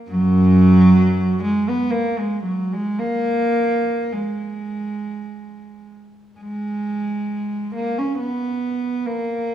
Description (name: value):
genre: classical, free, expressive piece for unaccompanied cello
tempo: 42-70 BPM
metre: 3/4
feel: rubato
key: G# minor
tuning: A4 = 440 Hz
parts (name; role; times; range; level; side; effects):
- warm cello; solo; 0.1-9.5 s; F#2 to C#4; -17 LUFS; right 1 dB; none
room: moderate scoring stage reverb, RT60 1.5 s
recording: small room ambience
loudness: -17 LUFS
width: side -11 dB against mid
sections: 0.0-6.4 A section; 6.4-9.5 B section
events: none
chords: none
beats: | 0.12 1.00 1.92 | 2.99 4.11 5.21 | 6.41 7.31 8.18 | 9.06